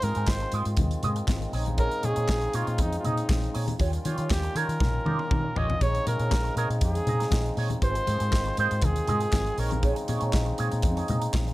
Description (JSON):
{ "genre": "disco", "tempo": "119 BPM", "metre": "4/4", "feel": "straight", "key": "Bb dorian", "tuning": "A4 = 442 Hz", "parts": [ { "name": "clear flugelhorn", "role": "melody", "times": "0.0-9.8 s", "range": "Eb4 to Eb5", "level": "-31 LUFS", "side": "equal", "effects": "none" }, { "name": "electric guitar with an envelope filter", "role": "accompaniment", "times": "0.0-11.5 s", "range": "Eb4 to Eb5", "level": "-33 LUFS", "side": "right 5 dB", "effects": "wah, phaser" }, { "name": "pedal harmonium", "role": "sustained chords", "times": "0.0-11.5 s", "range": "Db3 to F4", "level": "-34 LUFS", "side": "left 1 dB", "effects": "none" }, { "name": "vintage muted fingered electric bass", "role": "bass", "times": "0.0-11.5 s", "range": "Ab1 to Eb3", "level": "-28 LUFS", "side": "equal", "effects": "none" }, { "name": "modern studio drum kit", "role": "drums", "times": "0.0-11.5 s", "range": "handclaps, hi-hat, kick drum, snare drum, toms", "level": "-28 LUFS", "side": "equal", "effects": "none" }, { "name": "congas", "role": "percussion", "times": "0.0-11.5 s", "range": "none", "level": "-35 LUFS", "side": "left 3 dB", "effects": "none" } ], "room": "little or no reverb", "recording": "none", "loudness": "-24 LUFS", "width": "side -17 dB against mid", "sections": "0.0-11.5 A section", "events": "flugelhorn solo 0.0-11.5; drum fill 4.8-5.8", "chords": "0.0 Ab6; 1.5 Bbm11; 3.8 Eb9; 5.8 Bbm11; 7.8 Ab6; 9.6 Bbm11", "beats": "0.28 0.78 1.28 | 1.79 2.29 2.79 3.30 | 3.80 4.30 4.81 5.31 | 5.81 6.32 6.82 7.32 | 7.83 8.33 8.83 9.33 | 9.84 10.34 10.84 11.34" }